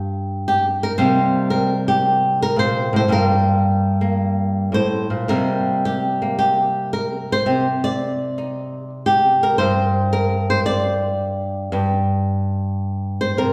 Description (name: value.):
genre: solo jazz.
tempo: 112 BPM.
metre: 4/4.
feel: swing 69% on 8ths, rubato.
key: G minor.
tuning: A4 = 439 Hz.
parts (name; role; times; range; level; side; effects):
flamenco guitar; solo; 0.0-13.5 s; G2 to D5; -19 LUFS; equal; none.
room: wet recital hall reverb, RT60 1.4 s.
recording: recorded in a church or concert hall.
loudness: -19 LUFS.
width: mono.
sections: 0.0-13.5 A section.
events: none.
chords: 0.0 Gm; 1.0 Cm7; 3.1 Gm7; 5.3 Cm7; 9.6 Gm.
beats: 0.43 | 0.96 1.49 2.02 2.56 | 3.09 3.63 4.17 4.72 | 5.28 5.83 6.38 6.92 | 7.46 7.99 8.52 9.05 | 9.59 10.12 10.65 11.18 | 11.72 12.27 12.82 13.38.